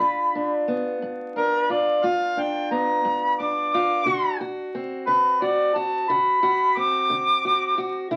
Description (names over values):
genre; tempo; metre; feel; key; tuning
acoustic country blues, solo or duo; 59 BPM (dotted quarters); 12/8; straight; G mixolydian; A4 = 444 Hz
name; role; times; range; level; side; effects
warm harmonica; melody; 0.0-8.1 s; Bb4 to D6; -23 LUFS; equal; none
fingerpicked steel-string acoustic guitar; accompaniment; 0.0-8.2 s; G2 to F#4; -29 LUFS; equal; none
room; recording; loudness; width
wet club reverb, RT60 0.5 s; very old 78 rpm record, vinyl crackle; -23 LUFS; mono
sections
0.0-8.2 A section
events
harmonica solo 0.0-8.2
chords
0.0 G7; 4.1 D7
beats
1.01 2.03 3.04 | 4.06 5.07 6.09 7.10 | 8.12